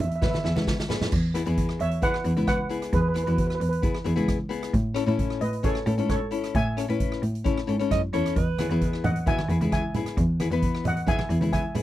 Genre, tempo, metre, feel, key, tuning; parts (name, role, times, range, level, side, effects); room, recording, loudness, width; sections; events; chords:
calypso; 133 BPM; 4/4; straight; E major; A4 = 441 Hz
steel pan; melody; 0.0-11.8 s; G#4 to G#5; -30 LUFS; right 2 dB
rich cello; bass; 0.0-11.8 s; C#2 to A2; -26 LUFS; equal
street-band drum kit; drums; 0.0-11.8 s; crash cymbal, hi-hat, kick drum, rim click, snare drum; -29 LUFS; equal
congas; percussion; 0.0-1.1, 8.6-11.8 s; -30 LUFS; right 2 dB
flamenco guitar; accompaniment; 0.2-11.8 s; B3 to B4; -30 LUFS; left 7 dB
mellow alto saxophone; second line; 7.9-8.9 s; B4 to D#5; -31 LUFS; right 10 dB; tape echo
little or no reverb; dry, close 1970s-style studio recording; -23 LUFS; side -14 dB against mid
0.0-1.1 A section; 1.1-11.8 A section
drum fill 0.2-1.1
0.0 E; 1.1 Eadd9; 4.7 Amaj7; 8.4 E